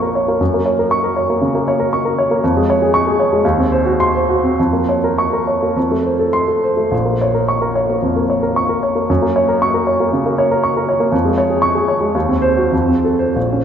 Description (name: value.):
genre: classical, romantic character piece for solo piano.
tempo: 92-123 BPM.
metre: 4/4.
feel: rubato.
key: Bb minor.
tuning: A4 = 440 Hz.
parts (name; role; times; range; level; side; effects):
warm baby grand piano; solo; 0.0-13.6 s; Bb1 to Db6; -13 LUFS; equal; none.
room: wet cathedral reverb, RT60 4.2 s.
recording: recorded in a church or concert hall.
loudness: -13 LUFS.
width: side -8 dB against mid.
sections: 0.0-13.6 A section.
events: none.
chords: 0.4 Gb; 2.4 Db/F; 3.4 Cdim/Eb; 4.6 Bbm/F; 5.8 F; 6.9 Bbm; 9.1 Gb; 11.1 Db/F; 12.1 Cdim/Eb; 12.7 F.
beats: | 0.40 0.91 1.41 1.92 | 2.42 2.93 3.43 3.98 | 4.57 5.18 5.76 6.33 | 6.92 7.49 8.03 8.56 | 9.09 9.61 10.12 10.64 | 11.13 11.63 12.14 12.72 | 13.36.